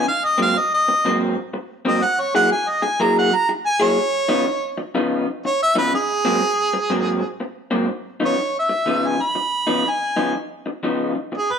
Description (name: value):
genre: blues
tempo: 123 BPM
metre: 4/4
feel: swing 65% on 8ths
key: Db mixolydian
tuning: A4 = 438 Hz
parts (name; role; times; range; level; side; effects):
- warm harmonica; melody; 0.0-11.6 s; Ab4 to Cb6; -19 LUFS; right 1 dB; overdrive
- electric guitar through a small old amp; riff; 0.0-11.4 s; Ab2 to Ab4; -22 LUFS; left 1 dB; none
room: moderate stone room reverb, RT60 1.1 s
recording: band playing live in one room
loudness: -18 LUFS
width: side -7 dB against mid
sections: 0.0-7.9 A section; 7.9-11.6 B section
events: harmonica solo 0.0-7.9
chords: 0.1 Ab9; 2.0 Gb9; 4.0 Db9; 5.9 Ab9; 7.9 Db9